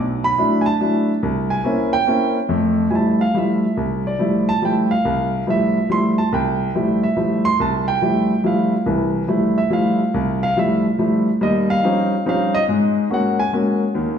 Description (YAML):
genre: jazz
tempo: 141 BPM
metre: 3/4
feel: swing 66% on 8ths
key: F major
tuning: A4 = 441 Hz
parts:
  - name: warm grand piano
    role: solo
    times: 0.0-14.2 s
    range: B1 to C6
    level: -16 LUFS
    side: equal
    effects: none
room: wet recital hall reverb, RT60 1.4 s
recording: recorded in a church or concert hall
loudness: -16 LUFS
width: side -8 dB against mid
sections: 0.0-2.5 A section; 2.5-12.7 A section; 12.7-14.2 A section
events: none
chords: 0.0 E9sus4; 1.2 C7b9; 2.5 Fmaj9; 11.4 Eb13; 12.7 Ab9sus4